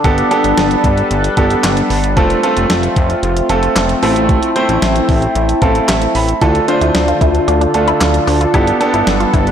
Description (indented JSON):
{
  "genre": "synth-pop",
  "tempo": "113 BPM",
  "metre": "4/4",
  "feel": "straight",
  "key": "D dorian",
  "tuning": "A4 = 440 Hz",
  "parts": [
    { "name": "clear concert grand piano", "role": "accompaniment", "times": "0.0-9.5 s", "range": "A3 to B5", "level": "-15 LUFS", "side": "right 2 dB", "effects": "none" },
    { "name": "sweeping resonant pad", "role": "sustained chords", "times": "0.0-9.5 s", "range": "D3 to B4", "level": "-17 LUFS", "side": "left 1 dB", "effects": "chorus, phaser" },
    { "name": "chorused synth bass", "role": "bass", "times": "0.0-9.5 s", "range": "F1 to D2", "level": "-17 LUFS", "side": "equal", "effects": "none" },
    { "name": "clean 12-bit digital drum machine", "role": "drums", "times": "0.0-9.5 s", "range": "handclaps, hi-hat, kick drum, snare drum", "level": "-17 LUFS", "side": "equal", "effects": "none" },
    { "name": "resonant blip pluck", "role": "arpeggios", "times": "6.4-9.5 s", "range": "D4 to F4", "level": "-19 LUFS", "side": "left 2 dB", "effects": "phaser, digital delay" }
  ],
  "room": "moderate scoring stage reverb, RT60 1.9 s",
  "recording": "blown-out, overdriven recording, overdrive",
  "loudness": "-11 LUFS",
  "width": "side -8 dB against mid",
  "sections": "0.0-9.5 A section",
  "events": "grand piano fill 5.4-6.4",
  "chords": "0.0 Gadd9; 2.2 F; 4.0 Am; 6.4 Dm; 8.5 Gadd9",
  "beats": "| 0.04 0.57 1.11 1.64 | 2.17 2.70 3.23 3.76 | 4.29 4.82 5.35 5.88 | 6.42 6.95 7.48 8.01 | 8.54 9.07"
}